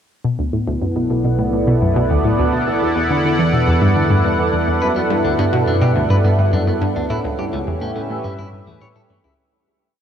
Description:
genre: ambient, sequencer-driven space music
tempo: 105 BPM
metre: 4/4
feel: straight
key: B minor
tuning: A4 = 441 Hz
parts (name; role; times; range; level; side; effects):
- sweeping resonant pad; sustained chords; 0.2-9.4 s; B3 to F#5; -19 LUFS; right 1 dB; chorus
- analog pluck; riff; 0.2-9.3 s; C#2 to E3; -18 LUFS; equal; chorus, phaser, analog delay
- analog drone; bass; 0.8-9.4 s; B1 to A2; -27 LUFS; equal; chorus
- clean electric guitar; arpeggios; 4.8-9.3 s; A3 to C#5; -28 LUFS; left 2 dB; auto-pan, analog delay
room: wet huge ambient reverb, RT60 8.5 s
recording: none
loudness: -15 LUFS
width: side -8 dB against mid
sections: 0.2-9.4 A section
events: fade-out 6.3-9.4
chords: 0.2 Bm; 2.5 E7(no3); 4.8 G; 7.1 A7

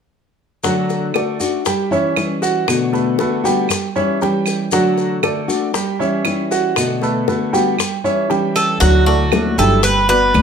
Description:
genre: latin, Cuban son and guajira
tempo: 117 BPM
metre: 4/4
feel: straight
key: D major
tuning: A4 = 440 Hz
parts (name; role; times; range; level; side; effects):
- nylon-string guitar; accompaniment; 0.6-10.4 s; B2 to F#4; -20 LUFS; left 4 dB; none
- clear grand piano; arpeggios; 0.6-10.4 s; F#3 to G5; -19 LUFS; right 4 dB; none
- bongos; percussion; 0.6-10.4 s; none; -24 LUFS; left 9 dB; none
- maracas; percussion; 0.6-10.4 s; none; -28 LUFS; left 3 dB; none
- claves; percussion; 1.1-10.4 s; none; -24 LUFS; right 4 dB; none
- Cuban tres; melody; 8.6-10.4 s; F#4 to B4; -15 LUFS; right 1 dB; none
- upright bass; bass; 8.8-10.4 s; G1 to D2; -16 LUFS; equal; none
- congas; percussion; 8.8-10.4 s; none; -23 LUFS; left 4 dB; none
room: moderate large studio reverb, RT60 0.9 s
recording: none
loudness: -14 LUFS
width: side -7 dB against mid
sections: 0.6-8.8 A section; 8.8-10.4 B section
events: none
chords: 0.6 D; 1.7 Em69; 2.7 Bm7; 3.7 Em6; 4.7 D; 5.7 Em69; 6.8 Bm7; 7.8 Em6; 8.8 Dadd9; 9.8 Gmaj7

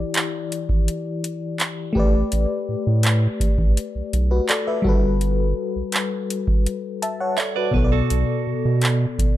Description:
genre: contemporary R&B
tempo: 83 BPM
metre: 4/4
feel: straight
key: unclear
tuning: A4 = 440 Hz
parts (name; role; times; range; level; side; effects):
- FM electric piano with tremolo; accompaniment; 0.0-9.4 s; B2 to A5; -24 LUFS; left 3 dB; none
- saturated sub bass; bass; 0.0-9.3 s; G1 to B2; -20 LUFS; right 1 dB; none
- booming analog drum machine; drums; 0.1-9.4 s; handclaps, hi-hat, kick drum; -21 LUFS; right 1 dB; none
- direct-recorded clean electric guitar; arpeggios; 7.4-9.0 s; F#4 to E5; -26 LUFS; right 14 dB; warbly pitch drift
room: digital ambience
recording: dark, warm production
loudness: -19 LUFS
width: side -14 dB against mid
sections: 0.0-9.4 A section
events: none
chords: 0.0 Em7; 2.0 A9sus4; 4.8 Gmaj9; 7.7 Bm7

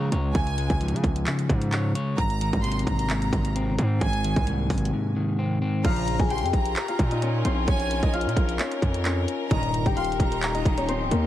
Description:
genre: hip hop, trap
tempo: 131 BPM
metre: 4/4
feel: half-time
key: Bb dorian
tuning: A4 = 440 Hz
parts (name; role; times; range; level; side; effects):
- electric guitar at the edge of break-up; accompaniment; 0.0-5.8 s; Ab2 to Db5; -26 LUFS; left 1 dB; none
- distorted 808-style bass; bass; 0.0-11.3 s; Db1 to Db3; -27 LUFS; right 1 dB; distortion
- trap drum kit; drums; 0.1-11.2 s; crash cymbal, handclaps, hi-hat, kick drum; -26 LUFS; equal; vintage 12-bit sampler grit
- warm studio violin section; second line; 0.3-10.8 s; Ab5 to C6; -32 LUFS; right 1 dB; ping-pong delay
- Celtic harp; melody; 5.8-11.3 s; Bb3 to Ab5; -28 LUFS; left 5 dB; none
- bright symphonic string section; sustained chords; 5.8-11.3 s; Eb3 to Bb4; -35 LUFS; left 2 dB; none
- resonant sweep polysynth; stabs; 5.8-6.3, 9.5-9.9 s; G2 to F3; -31 LUFS; right 2 dB; chorus
room: light reverb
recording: heavily compressed radio sound, multiband compression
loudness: -22 LUFS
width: side -13 dB against mid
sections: 0.0-5.8 A section; 5.8-11.3 B section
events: none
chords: 0.0 Db; 2.2 Ab; 5.8 Bbm; 9.5 Eb

